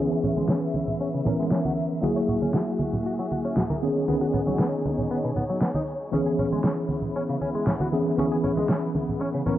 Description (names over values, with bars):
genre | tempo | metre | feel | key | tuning
nu-disco, nu disco | 117 BPM | 4/4 | straight | C# dorian | A4 = 440 Hz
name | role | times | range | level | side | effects
tine electric piano | accompaniment | 0.0-9.6 s | D#3 to A#4 | -25 LUFS | equal | overdrive, fast stereo tremolo, tape echo
warm studio string section | sustained chords | 0.0-9.6 s | A#3 to E5 | -32 LUFS | left 2 dB | low-pass filter
direct-recorded clean electric guitar | riff | 0.0-9.5 s | B2 to C#5 | -32 LUFS | left 2 dB | ensemble chorus, vintage 12-bit sampler grit, low-pass filter
tambourine, congas and bongos | percussion | 0.1-9.6 s | none | -30 LUFS | right 1 dB | none
electronic snare drum | drums | 0.5-8.8 s | none | -26 LUFS | equal | low-pass filter on perc, small room ambience, low-pass filter on hats, low-pass filter on snare, low-pass filter on toms
room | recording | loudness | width
light reverb | dry, gritty hardware recording, low-pass filter | -23 LUFS | side -13 dB against mid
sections
0.0-9.6 A section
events
filter sweep on drum 0.0-9.6; filter sweep on clean electric guitar 0.0-9.6; filter sweep on string section 0.0-9.6; filter sweep 0.0-9.6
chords
0.0 C#m7; 2.0 F#9; 3.8 B69; 6.1 C#m7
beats
0.49 1.00 1.52 | 2.03 2.54 3.06 3.57 | 4.08 4.59 5.11 5.62 | 6.13 6.65 7.16 7.67 | 8.18 8.70 9.21